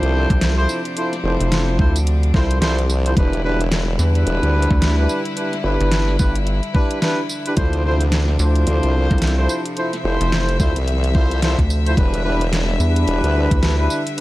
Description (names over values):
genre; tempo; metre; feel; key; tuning
glitch hop; 109 BPM; 4/4; swing 59% on 16ths; E phrygian; A4 = 440 Hz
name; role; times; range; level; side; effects
rich chamber string section; sustained chords; 0.0-14.2 s; C3 to E5; -27 LUFS; left 2 dB; sidechain pumping
mellow horn section; stabs; 0.0-14.2 s; D4 to C5; -22 LUFS; equal; vintage 12-bit sampler grit, sidechain pumping, digital delay
formant-sweep wobble bass; bass; 0.0-13.5 s; E1 to D2; -19 LUFS; equal; chorus
pop drum kit; drums; 0.0-14.2 s; hi-hat, snare drum, tambourine; -24 LUFS; equal; overdrive
rubbery square bass; bass; 0.3-13.9 s; F1 to E2; -17 LUFS; equal; none
electronic kick drum; drums; 0.3-13.6 s; none; -17 LUFS; equal; overdrive
room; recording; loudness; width
digital ambience; vinyl crackle; -16 LUFS; side -17 dB against mid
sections
0.0-14.2 A section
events
none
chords
0.0 Dm7; 3.2 Em7; 7.6 Dm7; 12.0 Em7